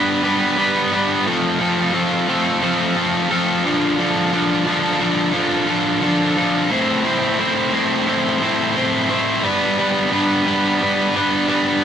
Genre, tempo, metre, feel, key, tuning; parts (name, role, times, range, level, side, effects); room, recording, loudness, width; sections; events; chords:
rock; 88 BPM; 4/4; straight; A4 = 440 Hz
cranked stack guitar; solo; 0.0-11.8 s; A2 to C5; -16 LUFS; equal; overdrive
moderate stone room reverb, RT60 1.1 s; rough rehearsal-room recording; -16 LUFS; side -8 dB against mid
0.0-11.8 A section
0.0 G; 1.2 F; 3.6 Dm; 6.7 Am; 9.4 G